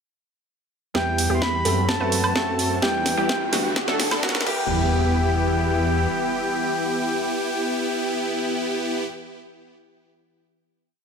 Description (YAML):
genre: EDM, festival progressive house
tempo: 128 BPM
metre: 4/4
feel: straight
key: E minor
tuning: A4 = 441 Hz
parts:
  - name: breathy flute-like synth lead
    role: melody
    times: 0.9-9.0 s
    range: G5 to C6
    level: -27 LUFS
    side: left 1 dB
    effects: chorus, digital delay
  - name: clear baby grand piano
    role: accompaniment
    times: 0.9-9.1 s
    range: F#3 to A4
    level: -31 LUFS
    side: right 5 dB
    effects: sidechain pumping, digital delay
  - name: lush unison pad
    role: sustained chords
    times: 0.9-9.0 s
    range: D3 to B4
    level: -33 LUFS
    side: left 3 dB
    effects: chorus, sidechain pumping
  - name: wide unison pluck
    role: arpeggios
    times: 0.9-9.0 s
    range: F#4 to B4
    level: -30 LUFS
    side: equal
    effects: vintage 12-bit sampler grit, sidechain pumping, digital delay
  - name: supersaw chords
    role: riff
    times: 0.9-9.0 s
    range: A3 to B4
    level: -26 LUFS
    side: equal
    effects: sidechain pumping, low-pass filter, digital delay
  - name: wide detuned saw bass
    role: bass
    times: 0.9-6.1 s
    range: D2 to F#2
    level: -26 LUFS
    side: equal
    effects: chorus, sidechain pumping
  - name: electronic kick drum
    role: drums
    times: 0.9-4.6 s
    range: none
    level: -32 LUFS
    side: equal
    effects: none
  - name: house drum kit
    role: drums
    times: 0.9-4.6 s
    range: crash cymbal, hi-hat, snare drum, woodblock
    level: -25 LUFS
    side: right 1 dB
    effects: none
  - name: riser and impact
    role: sound effects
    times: 2.2-9.1 s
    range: none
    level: -32 LUFS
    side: equal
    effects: none
room: moderate lush hall reverb, RT60 2.2 s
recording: high-pass filter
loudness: -20 LUFS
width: side -6 dB against mid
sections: 0.9-4.7 build; 4.7-8.4 final hit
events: build-up 0.9-4.7; drum fill 0.9-4.7; filter sweep on synth pluck 0.9-4.7; filter sweep 0.9-4.7; riser 2.2-4.7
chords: 0.9 Em; 1.9 F#dim; 2.8 Em; 3.8 D; 4.5 Em